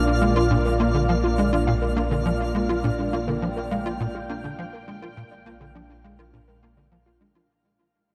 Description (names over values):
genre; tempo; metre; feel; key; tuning
ambient, sequencer-driven space music; 103 BPM; 4/4; straight; unclear; A4 = 440 Hz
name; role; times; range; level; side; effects
sweeping resonant pad; sustained chords; 0.0-7.5 s; Bb2 to G5; -30 LUFS; equal; chorus, shimmer reverb
warbly dusty pluck; arpeggios; 0.0-7.4 s; D4 to F5; -32 LUFS; equal; chorus, delay, shimmer reverb
analog drone; bass; 0.0-7.5 s; Bb1; -30 LUFS; equal; chorus
twinkling granular texture; texture; 0.0-7.5 s; F5; -37 LUFS; equal; built-in reverb, shimmer reverb
tight sequencer bass; riff; 0.2-7.5 s; Bb2 to F4; -28 LUFS; equal; ensemble chorus, cassette tape, delay, shimmer reverb
room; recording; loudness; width
wet huge ambient reverb, RT60 7.8 s; dark, warm production; -23 LUFS; mono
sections
0.0-7.5 A section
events
fade-out 0.0-7.5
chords
0.0 Bb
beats
| 0.51 1.09 1.67 2.26 | 2.84 3.42 4.00 4.59 | 5.17 5.75 6.33 6.92